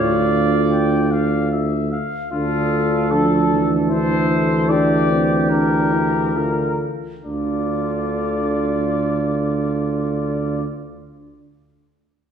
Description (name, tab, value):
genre	classical, brass quintet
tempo	67-76 BPM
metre	3/4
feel	straight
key	D minor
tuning	A4 = 436 Hz
part	mellow trumpet	melody	0.0-10.6 s	F4 to G5	-24 LUFS	left 4 dB	none
part	warm trumpet	second line	0.0-10.6 s	F4 to D5	-26 LUFS	right 4 dB	none
part	dark euphonium	accompaniment	0.0-10.6 s	D3 to D4	-24 LUFS	equal	none
part	warm French horn	accompaniment	0.0-10.6 s	C4 to F4	-24 LUFS	right 1 dB	none
part	warm tuba	bass	0.0-10.6 s	D2	-22 LUFS	right 1 dB	none
room	wet recital hall reverb, RT60 1.7 s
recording	recorded in a church or concert hall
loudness	-17 LUFS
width	side -8 dB against mid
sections	0.0-2.3 A section; 2.3-7.3 B section; 7.3-9.9 C section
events	slowing down 1.1-7.3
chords	0.0 Dm; 4.7 Gm/D; 7.3 Dm